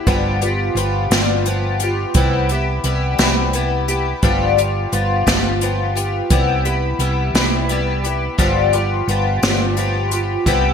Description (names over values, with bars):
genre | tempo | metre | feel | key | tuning
folk rock and heartland rock | 58 BPM (dotted quarters) | 6/8 | straight | unclear | A4 = 442 Hz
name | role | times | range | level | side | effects
picked twelve-string acoustic guitar | accompaniment | 0.0-10.7 s | G2 to G4 | -18 LUFS | left 3 dB | analog chorus
hollow-body short-scale fingered electric bass | bass | 0.1-10.7 s | G1 to C2 | -21 LUFS | right 1 dB | none
jazz brush drum kit | drums | 0.1-10.6 s | hi-hat, kick drum, snare drum | -19 LUFS | right 1 dB | gated reverb
room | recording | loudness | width
light reverb, studio ambience | bright 1980s-style digital production | -15 LUFS | side -7 dB against mid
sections
0.0-10.7 A section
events
none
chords
0.1 G7; 2.1 Cmaj7; 4.2 G7; 6.3 Cmaj7; 8.4 G7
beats
| 0.07 1.11 | 2.15 3.19 | 4.23 5.27 | 6.31 7.34 | 8.38 9.42 | 10.46